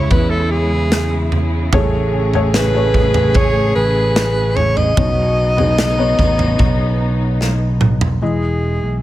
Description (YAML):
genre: pop ballad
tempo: 74 BPM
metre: 4/4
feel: straight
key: unclear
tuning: A4 = 438 Hz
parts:
  - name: breathy alto saxophone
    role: melody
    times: 0.0-9.0 s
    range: G#4 to D#5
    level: -20 LUFS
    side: equal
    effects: dub echo
  - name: dark French horn section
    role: second line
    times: 0.0-7.8 s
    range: D#4 to G#4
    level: -24 LUFS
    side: right 4 dB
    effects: dub echo
  - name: felt-muted upright piano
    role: accompaniment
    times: 0.0-9.0 s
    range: A2 to D#5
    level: -23 LUFS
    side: left 3 dB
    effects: dub echo
  - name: warm studio string section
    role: sustained chords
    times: 0.0-8.2 s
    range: C#3 to G#4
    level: -25 LUFS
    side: left 1 dB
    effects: none
  - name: fingered electric bass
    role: bass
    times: 0.0-9.0 s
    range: E1 to E2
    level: -18 LUFS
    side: equal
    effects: none
  - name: modern studio drum kit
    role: drums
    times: 0.1-8.2 s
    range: kick drum, snare drum, toms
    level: -18 LUFS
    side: right 1 dB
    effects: none
room: little or no reverb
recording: echo-heavy mix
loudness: -13 LUFS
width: side -14 dB against mid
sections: 0.0-8.2 A section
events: drum fill 7.4-8.2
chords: 0.0 C#m; 1.7 Amaj7; 5.0 Badd9; 8.2 Emaj7